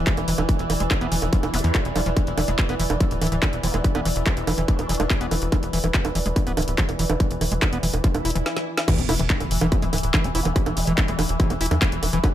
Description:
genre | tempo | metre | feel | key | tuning
psychedelic trance | 143 BPM | 4/4 | straight | unclear | A4 = 439 Hz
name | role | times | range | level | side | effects
pulsing gated texture | sustained chords | 0.0-12.3 s | E3 | -30 LUFS | equal | chorus, built-in reverb, vintage 12-bit sampler grit, sidechain pumping
tight sequencer bass | bass | 0.0-12.2 s | D1 to E2 | -26 LUFS | equal | none
warbly tape-like pad | texture | 0.0-8.5 s | E4 to D5 | -32 LUFS | right 1 dB | chorus, built-in reverb, phaser, sidechain pumping
overdriven acid bass | riff | 0.1-12.3 s | E3 to F4 | -28 LUFS | moving between left 4 dB and right 3 dB | distortion, auto-pan, cassette tape, sidechain pumping, tape echo
drum and bass drum kit | drums | 0.1-12.3 s | bongos, crash cymbal, handclaps, hi-hat, snare drum | -26 LUFS | right 3 dB | overdrive
electronic kick drum | drums | 0.1-12.3 s | none | -22 LUFS | equal | distortion
zap, swell and impact | sound effects | 1.5-1.6, 8.2-10.6 s | none | -32 LUFS | equal | none
vowel-sweep wobble bass | second line | 3.6-5.1, 10.3-11.2 s | G#3 to E4 | -37 LUFS | left 3 dB | wide subtle chorus, sidechain pumping, high-pass filter, ping-pong delay
room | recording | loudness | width
little or no reverb | none | -20 LUFS | side -12 dB against mid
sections
0.0-8.9 A section; 8.9-12.3 B section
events
swell 8.2-8.9; drum fill 8.5-8.9; stop 8.5-8.9; drop 8.9-12.3; impact 8.9-10.6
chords
0.0 E5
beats
0.07 | 0.49 0.91 1.33 1.75 | 2.17 2.59 3.01 3.42 | 3.85 4.26 4.68 5.10 | 5.52 5.94 6.36 6.78 | 7.20 7.62 8.04 8.46 | 8.88 9.30 9.72 10.14 | 10.56 10.98 11.40 11.82 | 12.24

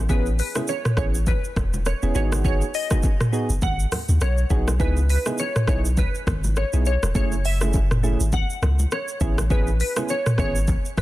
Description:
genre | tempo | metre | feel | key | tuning
afrobeats | 102 BPM | 4/4 | swing 58% on 16ths | unclear | A4 = 440 Hz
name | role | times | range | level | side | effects
glassy wavetable pluck | melody | 0.0-11.0 s | B4 to F#5 | -29 LUFS | left 1 dB | chorus
punchy sub bass | bass | 0.0-11.0 s | E1 to D#2 | -22 LUFS | equal | none
soft electric-piano-like synth keys | accompaniment | 0.1-10.6 s | A3 to G#4 | -29 LUFS | right 3 dB | chorus
afro-pop drum kit | drums | 0.1-11.0 s | hi-hat, kick drum, rim click, shaker, toms | -24 LUFS | equal | none
congas and bongos | percussion | 0.1-11.0 s | none | -33 LUFS | left 1 dB | none
room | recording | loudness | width
digital ambience | dense, heavily limited modern master | -19 LUFS | side -16 dB against mid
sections
0.0-11.0 A section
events
none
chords
0.0 Amaj7; 2.2 G#m7; 4.8 C#m9; 7.2 F#m9; 9.2 Amaj7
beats
| 0.09 0.68 1.27 1.86 | 2.44 3.03 3.62 4.21 | 4.80 5.39 5.97 6.56 | 7.15 7.74 8.33 8.92 | 9.50 10.09 10.68

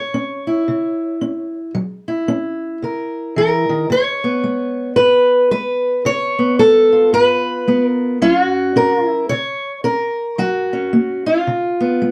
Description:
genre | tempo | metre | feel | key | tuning
acoustic country blues, solo or duo | 111 BPM | 4/4 | swing 61% on 8ths | F# mixolydian | A4 = 441 Hz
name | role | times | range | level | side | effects
fingerpicked steel-string acoustic guitar | solo | 0.0-12.1 s | G#2 to C#5 | -17 LUFS | equal | none
room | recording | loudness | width
moderate studio ambience, RT60 0.5 s | none | -17 LUFS | mono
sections
0.0-12.1 A section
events
none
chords
0.0 F#7; 3.9 C#7; 8.2 F#; 11.5 C#7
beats
0.13 0.66 1.20 | 1.74 2.27 2.81 3.35 | 3.89 4.43 4.97 5.51 | 6.05 6.59 7.13 7.67 | 8.21 8.76 9.30 9.84 | 10.38 10.93 11.47 12.01

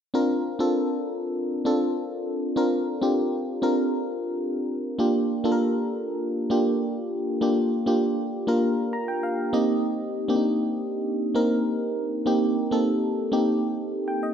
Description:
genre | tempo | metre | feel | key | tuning
pop | 99 BPM | 4/4 | straight | unclear | A4 = 440 Hz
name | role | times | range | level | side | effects
FM electric piano | accompaniment | 0.1-14.3 s | Bb3 to Bb5 | -23 LUFS | equal | chorus
room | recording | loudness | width
moderate scoring stage reverb, RT60 1.6 s | dark, warm production | -23 LUFS | side -8 dB against mid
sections
0.1-14.3 A section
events
FM electric piano fill 8.6-9.8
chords
0.1 Bbadd9; 5.0 Gm7/Bb; 9.5 Cm7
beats
| 0.14 0.75 1.35 1.96 | 2.56 3.17 3.78 4.38 | 4.99 5.59 6.20 6.81 | 7.41 8.02 8.63 9.23 | 9.84 10.44 11.05 11.66 | 12.26 12.87 13.47 14.08

